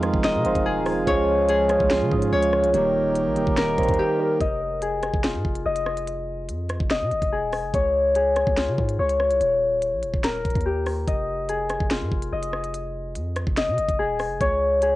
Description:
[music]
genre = hip hop, drill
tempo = 144 BPM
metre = 4/4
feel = half-time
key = F minor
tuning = A4 = 440 Hz
[part]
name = mellow tine electric piano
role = accompaniment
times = 0.0-4.4 s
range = Eb3 to Bb4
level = -24 LUFS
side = right 4 dB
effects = phaser, low-pass filter
[part]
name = pedal harmonium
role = sustained chords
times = 0.0-4.4 s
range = Db3 to G4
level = -29 LUFS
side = right 1 dB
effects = none
[part]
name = Celtic harp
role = arpeggios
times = 0.0-15.0 s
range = F4 to Eb5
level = -23 LUFS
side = left 2 dB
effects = low-pass filter, analog delay
[part]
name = long sustained 808-style bass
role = bass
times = 0.0-15.0 s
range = Eb1 to Db3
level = -29 LUFS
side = equal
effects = none
[part]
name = drill drum kit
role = drums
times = 0.0-14.9 s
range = hi-hat, kick drum, rim click, snare drum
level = -27 LUFS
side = equal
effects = vintage 12-bit sampler grit, cassette tape
[part]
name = soft octave-layered synth lead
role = second line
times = 0.5-4.4 s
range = Bb4 to Db5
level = -30 LUFS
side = right 2 dB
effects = chorus, phaser, analog delay
[sound]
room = light reverb, digital ambience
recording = home recording on cassette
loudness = -20 LUFS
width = side -17 dB against mid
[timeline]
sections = 0.0-4.4 A section; 4.4-15.0 B section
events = drums muted 4.0-4.4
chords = 0.0 Fm7; 1.1 Db; 2.7 Eb; 4.4 Fm7; 7.7 Db; 9.4 Eb; 11.1 Fm7; 14.4 Db5

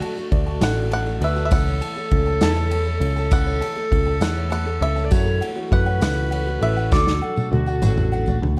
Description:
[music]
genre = indie folk with a building arrangement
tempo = 67 BPM (dotted quarters)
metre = 6/8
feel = straight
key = D major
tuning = A4 = 441 Hz
[part]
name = bluegrass banjo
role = melody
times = 0.0-8.1 s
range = D5 to A5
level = -30 LUFS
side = equal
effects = none
[part]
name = alto recorder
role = second line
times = 0.0-8.4 s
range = F#4 to D5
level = -31 LUFS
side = equal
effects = none
[part]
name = picked twelve-string acoustic guitar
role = accompaniment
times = 0.0-8.6 s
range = F#2 to A4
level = -31 LUFS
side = equal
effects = none
[part]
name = ukulele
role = arpeggios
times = 0.0-8.6 s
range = F#4 to A5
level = -34 LUFS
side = equal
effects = none
[part]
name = unplugged drum kit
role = drums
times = 0.0-8.6 s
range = kick drum, ride cymbal, snare drum, toms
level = -26 LUFS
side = equal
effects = none
[part]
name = tambourine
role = percussion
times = 0.2-8.3 s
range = none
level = -46 LUFS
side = equal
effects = none
[part]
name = picked electric bass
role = bass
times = 0.3-8.6 s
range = A1 to F#2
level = -24 LUFS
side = equal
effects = none
[sound]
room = light reverb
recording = dark, warm production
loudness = -21 LUFS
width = mono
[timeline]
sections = 0.0-8.6 A section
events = drum fill 6.9-8.6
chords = 0.0 D; 1.5 A/C#; 5.1 F#m7; 6.9 D

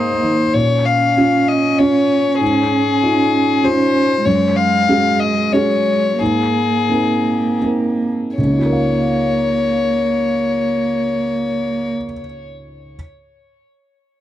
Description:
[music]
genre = neoclassical piano and strings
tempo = 77-99 BPM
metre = 3/4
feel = rubato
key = Db major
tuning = A4 = 445 Hz
[part]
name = rich violin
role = melody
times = 0.0-11.9 s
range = Ab4 to F5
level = -18 LUFS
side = left 6 dB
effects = none
[part]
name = dark cello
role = second line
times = 0.0-11.9 s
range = Ab3 to Db4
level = -19 LUFS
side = right 3 dB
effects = none
[part]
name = felt-muted upright piano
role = accompaniment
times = 0.0-13.0 s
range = Db2 to F5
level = -19 LUFS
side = right 1 dB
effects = none
[part]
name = concert harp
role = arpeggios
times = 0.0-0.6 s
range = none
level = barely audible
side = none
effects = none
[sound]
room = light reverb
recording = dry, close 1970s-style studio recording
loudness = -14 LUFS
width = side -12 dB against mid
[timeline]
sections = 0.5-8.4 A section; 8.4-12.9 B section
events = slowing down 3.3-8.4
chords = 0.0 Abadd9; 0.5 Bbm; 2.4 Dbadd9/Ab; 4.3 Gbsus2; 6.2 Abadd9; 8.4 Db69

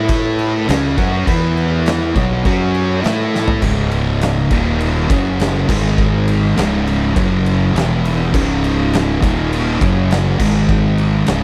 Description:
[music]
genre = stoner and doom metal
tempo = 102 BPM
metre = 4/4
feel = straight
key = C# minor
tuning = A4 = 440 Hz
[part]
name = analog drone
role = sustained chords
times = 0.1-3.6 s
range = A3 to F#5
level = -34 LUFS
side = equal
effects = none
[part]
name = fuzz guitar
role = riff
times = 0.0-11.4 s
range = C#2 to A4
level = -24 LUFS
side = equal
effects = distortion
[part]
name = thick fuzz guitar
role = riff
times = 0.0-11.4 s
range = C#2 to A4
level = -23 LUFS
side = equal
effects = distortion
[part]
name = thick fuzz guitar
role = riff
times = 0.0-11.4 s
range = C#2 to A4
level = -22 LUFS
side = equal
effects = distortion
[part]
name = fuzz fingered electric bass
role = bass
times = 0.0-11.4 s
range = C#1 to A2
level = -22 LUFS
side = equal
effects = overdrive
[part]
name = oversized low-tuned drum kit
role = drums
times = 0.1-11.4 s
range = crash cymbal, kick drum, ride cymbal, snare drum, toms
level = -22 LUFS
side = equal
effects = none
[sound]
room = little or no reverb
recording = none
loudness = -16 LUFS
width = mono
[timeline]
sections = 0.0-3.6 A section; 3.6-11.4 B section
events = drum fill 3.3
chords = 0.0 A5; 0.7 B5; 1.3 E5; 2.2 B5; 2.5 F#5; 3.0 A5; 3.6 C#5; 4.5 D#5; 5.1 F#5; 5.7 G#5; 6.6 C#5; 7.2 F#5; 7.8 E5; 8.3 C#5; 9.2 D#5; 9.8 F#5; 10.4 G#5

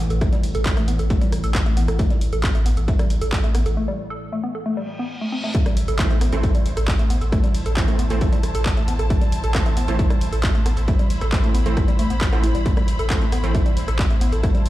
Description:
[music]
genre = driving peak-time techno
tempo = 135 BPM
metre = 4/4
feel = straight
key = A minor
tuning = A4 = 440 Hz
[part]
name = woody wave-folded pluck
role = riff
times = 0.0-14.6 s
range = G3 to A4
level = -27 LUFS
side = equal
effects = chorus, overdrive, sidechain pumping, tape echo
[part]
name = saturated sub bass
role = bass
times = 0.0-14.7 s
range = A1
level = -22 LUFS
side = equal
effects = tube saturation, sidechain pumping, low-pass filter
[part]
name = deep dark ambient pad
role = drone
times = 0.0-3.8 s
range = A2 to E3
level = -32 LUFS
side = left 1 dB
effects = chorus, built-in reverb, sidechain pumping
[part]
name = dusty soul sampler-style drum kit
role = drums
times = 0.1-14.7 s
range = hi-hat, snare drum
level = -39 LUFS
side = equal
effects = none
[part]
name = techno drum kit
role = drums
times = 0.1-14.7 s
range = handclaps, hi-hat, rim click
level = -30 LUFS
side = equal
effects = overdrive, sidechain pumping on hats, small room reverb
[part]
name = electronic kick drum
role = drums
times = 0.2-14.5 s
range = none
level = -19 LUFS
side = equal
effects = overdrive, small room reverb
[part]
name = reverse cymbal and impact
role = sound effects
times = 4.8-7.3 s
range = none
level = -32 LUFS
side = left 1 dB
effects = none
[part]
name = clear studio string section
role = texture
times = 5.5-14.7 s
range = E4 to B5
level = -33 LUFS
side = equal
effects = sidechain pumping
[part]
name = rave stab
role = stabs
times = 6.0-13.6 s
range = E3 to C4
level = -29 LUFS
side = right 3 dB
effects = chorus, built-in reverb, sidechain pumping, dub echo
[sound]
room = digital ambience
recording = played on a big sound system in a bare room, large studio reverb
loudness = -18 LUFS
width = side -15 dB against mid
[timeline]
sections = 0.0-5.5 A section; 5.5-14.7 B section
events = filter sweep on synth arpeggio sound 0.0-5.5; break 3.8-5.5; reverse cymbal 4.8-5.5; drop 5.5-14.7; impact 5.5-7.3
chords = 0.0 A5; 5.5 Am

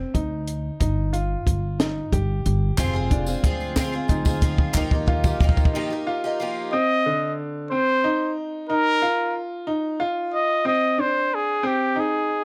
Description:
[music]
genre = indie folk with a building arrangement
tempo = 61 BPM (dotted quarters)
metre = 6/8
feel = straight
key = Eb major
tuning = A4 = 440 Hz
[part]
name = clear upright piano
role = arpeggios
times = 0.0-12.4 s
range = D3 to G4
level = -29 LUFS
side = equal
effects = digital delay
[part]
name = upright bass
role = bass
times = 0.1-5.7 s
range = F1 to Eb2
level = -28 LUFS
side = equal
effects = none
[part]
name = compact cocktail drum kit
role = drums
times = 0.1-5.8 s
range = hi-hat, kick drum, snare drum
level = -24 LUFS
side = equal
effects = none
[part]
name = picked twelve-string acoustic guitar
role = accompaniment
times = 2.8-6.7 s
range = Eb3 to Ab4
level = -31 LUFS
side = equal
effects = none
[part]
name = mellow brass ensemble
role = sustained chords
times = 2.8-6.7 s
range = Eb3 to Bb4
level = -38 LUFS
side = equal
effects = none
[part]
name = group handclap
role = percussion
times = 2.8-5.5 s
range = none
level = -35 LUFS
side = equal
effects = none
[part]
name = tambourine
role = percussion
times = 2.8-5.7 s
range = none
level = -44 LUFS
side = equal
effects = none
[part]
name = mellow trumpet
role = melody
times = 6.7-12.4 s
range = G4 to Eb5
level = -23 LUFS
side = equal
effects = none
[sound]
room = small room ambience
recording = none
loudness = -23 LUFS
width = mono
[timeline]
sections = 0.0-6.7 A section; 6.7-12.4 B section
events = build-up 0.0-6.7; drum fill 0.0-5.7; break 5.7-6.7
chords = 0.0 Ab (rootless); 0.8 Ebadd9/G; 2.8 Fm; 4.8 Ebadd9; 6.7 Cmadd9/D; 8.7 Ebsus2; 10.7 Ab

